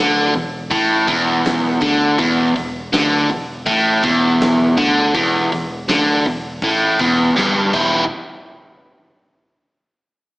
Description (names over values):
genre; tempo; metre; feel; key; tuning
blues rock power trio and southern rock; 81 BPM; 4/4; straight; E minor; A4 = 440 Hz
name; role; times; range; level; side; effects
biting overdriven guitar; riff; 0.0-8.0 s; E2 to G4; -14 LUFS; equal; spring reverb
fingered electric bass; bass; 0.0-8.1 s; E1 to D2; -29 LUFS; equal; none
huge arena drum kit; drums; 0.3-7.9 s; crash cymbal, hi-hat, kick drum, snare drum; -26 LUFS; equal; none
room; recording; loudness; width
moderate large studio reverb, RT60 1.5 s; small speaker sound; -14 LUFS; side -21 dB against mid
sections
0.0-8.1 A section; 8.1-10.4 B section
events
drum fill 7.4-8.1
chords
0.0 Em; 8.1 N.C.